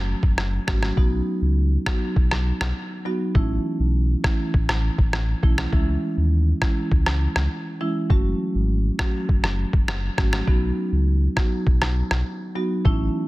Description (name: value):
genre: dancehall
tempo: 101 BPM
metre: 4/4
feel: straight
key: unclear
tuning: A4 = 441 Hz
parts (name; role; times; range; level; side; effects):
- sub bass with octave; bass; 0.0-13.1 s; F#1 to D#2; -22 LUFS; equal; none
- lo-fi sampler-style drum kit; drums; 0.2-13.0 s; kick drum, rim click; -21 LUFS; equal; none
- marimba with soft mallets; accompaniment; 0.7-13.3 s; E3 to F#4; -26 LUFS; right 1 dB; none
room: little or no reverb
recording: dense, heavily limited modern master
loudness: -19 LUFS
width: side -19 dB against mid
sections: 0.0-13.3 A section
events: none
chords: 0.0 F#m; 1.0 B; 3.4 A; 5.7 C#m; 8.1 F#m; 10.5 B